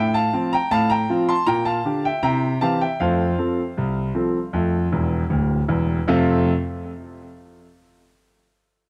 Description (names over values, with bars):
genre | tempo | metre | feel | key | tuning
ragtime piano | 78 BPM | 2/4 | straight | F major | A4 = 440 Hz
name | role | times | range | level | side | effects
clear concert grand piano | solo | 0.0-6.5 s | D1 to C6 | -21 LUFS | equal | analog delay
room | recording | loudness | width
moderate studio reverb, RT60 0.6 s | dark, warm production | -21 LUFS | mono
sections
0.0-6.1 A section; 6.1-7.6 B section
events
grand piano fill 4.9-6.1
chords
0.0 F/A; 1.5 Gm/Bb; 2.2 C7; 3.0 F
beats
0.71 | 1.47 2.23 | 3.00 3.77 | 4.54 5.31 | 6.08